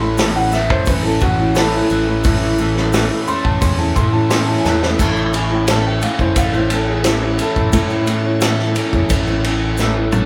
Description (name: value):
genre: folk rock and heartland rock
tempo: 87 BPM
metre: 4/4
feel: straight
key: unclear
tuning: A4 = 440 Hz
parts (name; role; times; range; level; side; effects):
- clear upright piano; second line; 0.0-8.1 s; E4 to C6; -25 LUFS; equal; none
- picked steel-string acoustic guitar; accompaniment; 0.0-10.3 s; A2 to A4; -22 LUFS; equal; none
- tonewheel organ; sustained chords; 0.0-10.3 s; C#4 to C#5; -36 LUFS; equal; none
- overdriven electric guitar; riff; 0.0-10.3 s; A2 to A4; -26 LUFS; equal; none
- modern bright picked electric bass; bass; 0.0-10.3 s; F#1 to A2; -23 LUFS; equal; none
- vintage drum kit; drums; 0.2-10.3 s; crash cymbal, hi-hat, kick drum, ride cymbal, snare drum, toms; -21 LUFS; equal; none
- tube shaker; percussion; 0.2-10.3 s; none; -37 LUFS; equal; none
room: light reverb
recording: band playing live in one room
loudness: -16 LUFS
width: mono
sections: 0.0-5.0 A section; 5.0-10.3 B section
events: upright piano solo 0.0-5.0; drum fill 4.7-5.0, 9.8-10.3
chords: 0.0 A